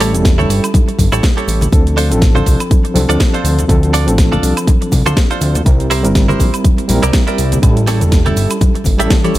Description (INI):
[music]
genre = nu-disco, nu disco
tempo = 122 BPM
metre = 4/4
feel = swing 56% on 16ths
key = D minor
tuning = A4 = 441 Hz
[part]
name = overdriven reed electric piano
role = accompaniment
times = 0.0-9.4 s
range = F3 to Bb4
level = -18 LUFS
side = equal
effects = fast tremolo, digital delay
[part]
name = direct-recorded clean electric guitar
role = riff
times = 0.0-9.4 s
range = D4 to E5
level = -20 LUFS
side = right 3 dB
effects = wide subtle chorus, digital delay
[part]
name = fat analog bass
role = bass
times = 0.0-9.4 s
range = E1 to D2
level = -15 LUFS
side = equal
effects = none
[part]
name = house drum kit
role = drums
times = 0.0-9.4 s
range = hi-hat, shaker, snare drum, toms, woodblock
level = -21 LUFS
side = equal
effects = none
[part]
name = cabasa and congas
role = percussion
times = 0.0-9.4 s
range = none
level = -22 LUFS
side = left 2 dB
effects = none
[part]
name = electronic kick drum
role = drums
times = 0.2-9.2 s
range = none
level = -12 LUFS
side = equal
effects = none
[sound]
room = little or no reverb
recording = none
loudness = -10 LUFS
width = side -15 dB against mid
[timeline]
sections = 0.0-9.4 A section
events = drum fill 9.1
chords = 0.0 A7; 1.7 Dm7; 5.7 C7; 7.6 A7